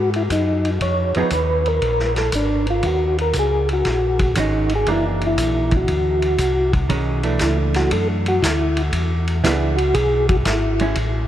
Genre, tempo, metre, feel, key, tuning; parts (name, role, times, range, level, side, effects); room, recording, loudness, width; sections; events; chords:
soul jazz organ trio; 118 BPM; 4/4; swing 68% on 8ths; B minor from 6.9 s; A4 = 442 Hz
percussive tonewheel organ; melody; 0.0-10.9 s; D4 to Db5; -20 LUFS; equal; slow rotary speaker, chorus vibrato
mellow tonewheel organ; bass; 0.0-11.3 s; Gb1 to G#2; -21 LUFS; equal; slow rotary speaker
vintage drum kit; drums; 0.1-11.1 s; hi-hat, kick drum, ride cymbal, snare drum; -25 LUFS; equal
hollow-body jazz guitar; accompaniment; 1.2-1.3, 4.4-11.0 s; Eb3 to Ab4; -26 LUFS; right 3 dB
moderate huge ambient reverb, RT60 7.9 s; in a vast, echoing space; -16 LUFS; side -11 dB against mid
0.0-6.9 A section; 6.9-11.3 B section
0.0 Emaj7 (rootless); 0.8 Fm7b5; 1.8 Bb7; 2.8 Ebm7; 4.9 Gbaug7; 6.9 Bm11; 8.9 E7